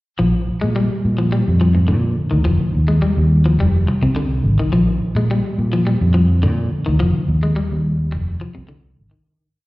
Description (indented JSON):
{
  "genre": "afrobeat",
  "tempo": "106 BPM",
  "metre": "4/4",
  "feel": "straight",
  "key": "Bb mixolydian",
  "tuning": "A4 = 440 Hz",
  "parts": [
    { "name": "electric guitar at the edge of break-up", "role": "arpeggios", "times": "0.2-9.2 s", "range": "Ab2 to Ab3", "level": "-20 LUFS", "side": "left 2 dB", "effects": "slapback echo" },
    { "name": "fingered electric bass", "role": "bass", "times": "0.2-9.1 s", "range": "F1 to Bb2", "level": "-16 LUFS", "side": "equal", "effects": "none" }
  ],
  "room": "light reverb",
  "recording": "live gig heard through the venue's PA, recital hall reverb",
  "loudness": "-15 LUFS",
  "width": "side -19 dB against mid",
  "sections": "0.2-9.3 groove",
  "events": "fade-out 7.0-9.3",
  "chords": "0.2 Bb5; 2.5 Fm7; 4.7 Bb5; 7.0 F7(no3)",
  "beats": "| 0.19 0.76 1.32 1.89 | 2.46 3.03 3.59 4.16 | 4.73 5.29 5.86 6.43 | 7.00 7.56 8.12 8.69"
}